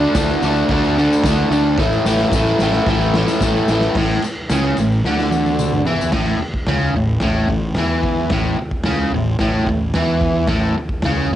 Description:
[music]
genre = garage rock duo or trio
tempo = 110 BPM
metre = 4/4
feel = straight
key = A major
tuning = A4 = 439 Hz
[part]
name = biting overdriven guitar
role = riff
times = 0.0-11.4 s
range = A2 to D4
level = -17 LUFS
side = equal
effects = none
[part]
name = fuzz fingered electric bass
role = bass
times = 0.0-11.4 s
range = A1 to E2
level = -21 LUFS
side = equal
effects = overdrive
[part]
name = raw garage drum kit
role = drums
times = 0.1-11.4 s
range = crash cymbal, kick drum, ride cymbal, snare drum, toms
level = -21 LUFS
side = equal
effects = none
[part]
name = tambourine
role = percussion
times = 0.1-6.1 s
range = none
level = -35 LUFS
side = left 9 dB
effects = none
[sound]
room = little or no reverb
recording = home recording on cassette, nothing above 10.8 kHz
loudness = -15 LUFS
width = side -12 dB against mid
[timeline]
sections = 0.0-3.9 A section; 3.9-6.1 B section; 6.1-11.4 C section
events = drum fill 1.8-3.9, 5.0-6.1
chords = 0.0 D5; 1.8 A5; 3.9 A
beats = 0.15 0.69 1.24 | 1.78 2.32 2.86 3.40 | 3.95 4.49 5.03 5.58 | 6.12 6.67 7.21 7.76 | 8.31 8.85 9.40 9.95 | 10.49 11.04

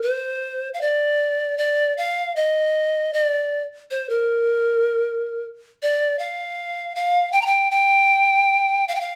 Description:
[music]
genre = andean folk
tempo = 78 BPM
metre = 4/4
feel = straight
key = G minor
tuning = A4 = 440 Hz
[part]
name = polished pan flute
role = solo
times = 0.0-9.2 s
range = Bb4 to Bb5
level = -21 LUFS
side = equal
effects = none
[sound]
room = moderate studio reverb, RT60 0.9 s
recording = band playing live in one room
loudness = -21 LUFS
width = mono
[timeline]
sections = 0.0-9.2 A section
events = none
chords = none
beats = 0.41 1.19 1.96 | 2.73 3.51 4.28 5.05 | 5.82 6.60 7.37 8.14 | 8.91

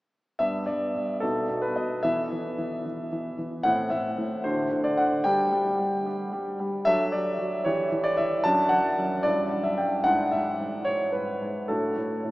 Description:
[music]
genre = classical-period piano sonatina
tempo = 75 BPM (dotted quarters)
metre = 6/8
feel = straight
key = G major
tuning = A4 = 442 Hz
[part]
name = warm concert grand piano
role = solo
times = 0.4-12.3 s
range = F#2 to A5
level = -24 LUFS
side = equal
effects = none
[sound]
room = wet cathedral reverb, RT60 6.2 s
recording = in a vast, echoing space, small speaker sound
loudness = -24 LUFS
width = side -18 dB against mid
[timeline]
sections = 0.4-12.3 A section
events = none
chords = 0.4 G; 1.2 B7; 2.0 E5; 3.6 Am; 4.5 D7; 5.3 G5; 6.9 D/F#; 7.7 Em6; 8.4 D/F#; 9.2 Em/G; 10.0 E7/G#; 11.7 D/A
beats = | 0.41 1.22 | 2.04 2.85 | 3.65 4.45 | 5.26 6.06 | 6.86 7.66 | 8.45 9.25 | 10.05 10.86 | 11.69

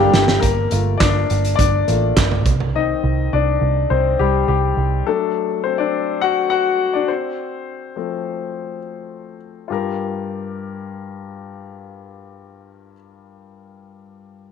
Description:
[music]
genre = piano-driven pop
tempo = 104 BPM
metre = 4/4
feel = straight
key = G minor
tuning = A4 = 442 Hz
[part]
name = warm concert grand piano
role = accompaniment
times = 0.0-14.5 s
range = G2 to G5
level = -20 LUFS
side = left 8 dB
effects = none
[part]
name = vintage muted picked electric bass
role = bass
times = 0.0-5.0 s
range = G1 to C2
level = -19 LUFS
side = right 2 dB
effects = none
[part]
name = loose indie drum kit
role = drums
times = 0.1-2.7 s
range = handclaps, hi-hat, kick drum, snare drum, toms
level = -19 LUFS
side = right 2 dB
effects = none
[sound]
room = moderate plate reverb, RT60 2.2 s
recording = 1960s-style stereo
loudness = -16 LUFS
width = side -7 dB against mid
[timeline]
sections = 0.4-9.7 A section; 9.7-12.0 B section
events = drum fill 0.0-0.4; grand piano solo 0.4-9.7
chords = 0.4 Gm7; 2.5 Cmadd9; 5.1 D; 7.1 F; 9.7 Gm7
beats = | 0.42 1.00 1.58 2.16 | 2.74 3.32 3.90 4.48 | 5.06 5.64 6.22 6.80 | 7.38 7.96 8.53 9.11 | 9.69 10.27 10.85 11.43

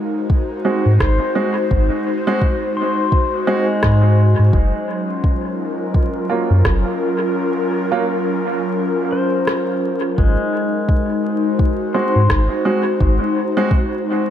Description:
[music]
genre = ambient dub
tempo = 85 BPM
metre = 4/4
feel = swing 60% on 16ths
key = Ab mixolydian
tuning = A4 = 441 Hz
[part]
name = airy breathy pad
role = sustained chords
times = 0.0-14.3 s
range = Gb3 to C5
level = -20 LUFS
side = left 1 dB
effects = chorus
[part]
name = pedal steel guitar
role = arpeggios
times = 0.0-14.3 s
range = Ab3 to C6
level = -24 LUFS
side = left 4 dB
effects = low-pass filter, dub echo
[part]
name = electronic kick drum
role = drums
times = 0.3-13.9 s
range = none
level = -17 LUFS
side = equal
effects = none
[part]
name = clear upright piano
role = stabs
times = 0.6-13.7 s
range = Gb3 to Gb4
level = -22 LUFS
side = right 2 dB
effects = dub echo
[part]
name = soft dub sub bass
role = bass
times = 0.9-13.2 s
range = Gb1 to Ab2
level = -14 LUFS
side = equal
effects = none
[part]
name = electronic rim click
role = drums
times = 1.0-12.5 s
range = none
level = -27 LUFS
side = equal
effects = dub echo
[sound]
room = moderate echo chamber reverb, RT60 2.0 s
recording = vinyl crackle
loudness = -15 LUFS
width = side -10 dB against mid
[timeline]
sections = 0.0-14.3 A section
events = filter sweep on pedal steel guitar 0.0-14.3; kick drops out 7.4-10.2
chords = 0.0 Ab7; 4.5 Gbmaj7; 10.2 Ab7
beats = 0.30 1.00 | 1.71 2.42 3.12 3.83 | 4.53 5.24 5.95 6.65 | 7.36 8.06 8.77 9.47 | 10.18 10.89 11.59 12.30 | 13.00 13.71

